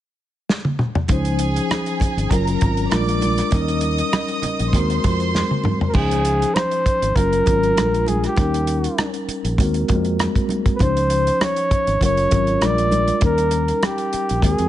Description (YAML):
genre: lush 1970s-style soul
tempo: 99 BPM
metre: 4/4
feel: swing 54% on 16ths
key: Db major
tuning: A4 = 438 Hz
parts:
  - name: warm soul drum kit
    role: drums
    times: 0.5-14.7 s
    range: crash cymbal, hi-hat, kick drum, rim click, snare drum, toms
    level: -21 LUFS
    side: equal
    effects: none
  - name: clear studio violin section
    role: second line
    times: 1.1-5.9 s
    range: Ab4 to Eb6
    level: -25 LUFS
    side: right 1 dB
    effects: none
  - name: mellow tine electric piano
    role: accompaniment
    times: 1.1-14.7 s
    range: F3 to C5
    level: -23 LUFS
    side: left 2 dB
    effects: medium stereo tremolo
  - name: fingered electric bass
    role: bass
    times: 1.1-14.7 s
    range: Gb1 to F2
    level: -22 LUFS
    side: equal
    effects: none
  - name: congas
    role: percussion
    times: 1.1-14.6 s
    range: none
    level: -29 LUFS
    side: right 3 dB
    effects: none
  - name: warm flugelhorn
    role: melody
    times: 5.9-14.7 s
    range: G4 to D5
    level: -20 LUFS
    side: equal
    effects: none
room: light reverb, small room ambience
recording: nothing above 10.3 kHz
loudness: -17 LUFS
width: side -13 dB against mid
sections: 0.0-1.1 A section; 1.1-5.9 B section; 5.9-14.7 C section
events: drum fill 0.5-1.1, 5.3-5.9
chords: 0.0 N.C.; 1.1 Dbmaj9; 2.3 Gbmaj7; 2.9 Bb7; 3.5 Eb7; 4.7 Ab9/Eb; 5.9 Dbmaj9; 7.2 Gbmaj7; 7.8 Bb7; 8.4 Eb7; 9.6 Ab9/Eb; 10.8 Dbmaj9; 12.0 Gbmaj7; 12.6 Bb7; 13.2 Eb7